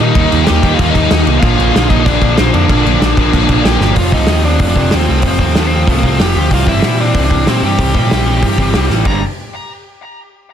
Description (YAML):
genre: punk rock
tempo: 189 BPM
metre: 4/4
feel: straight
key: unclear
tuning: A4 = 443 Hz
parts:
  - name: high-gain lead guitar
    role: melody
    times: 0.0-9.2 s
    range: A3 to Bb5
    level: -19 LUFS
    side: left 2 dB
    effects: distortion, tape echo
  - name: crunchy overdriven guitar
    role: riff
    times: 0.0-4.0 s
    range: Bb2 to Eb4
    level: -20 LUFS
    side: left 1 dB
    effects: none
  - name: overdriven semi-hollow guitar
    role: riff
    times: 0.0-9.2 s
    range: G2 to F4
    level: -17 LUFS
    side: right 12 dB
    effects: none
  - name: tight distorted guitar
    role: riff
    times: 0.0-9.2 s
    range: F2 to Eb4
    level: -20 LUFS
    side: left 16 dB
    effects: distortion
  - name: overdriven picked electric bass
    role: bass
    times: 0.0-9.2 s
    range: F1 to Bb2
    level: -15 LUFS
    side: equal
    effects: none
  - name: loose indie drum kit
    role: drums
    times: 0.2-9.1 s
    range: crash cymbal, hi-hat, kick drum, snare drum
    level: -15 LUFS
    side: equal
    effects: none
room: little or no reverb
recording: dense, heavily limited modern master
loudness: -9 LUFS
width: side -9 dB against mid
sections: 0.0-4.0 A section; 4.0-9.1 B section; 9.1-10.3 C section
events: drum fill 3.8, 8.9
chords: 0.0 Eb; 1.4 Bb; 4.0 F; 6.5 C; 9.1 G5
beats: | 0.16 0.47 0.79 1.11 | 1.43 1.75 2.06 2.38 | 2.70 3.02 3.33 3.65 | 3.97 4.29 4.60 4.92 | 5.24 5.56 5.88 6.20 | 6.51 6.83 7.15 7.47 | 7.79 8.11 8.42 8.74 | 9.06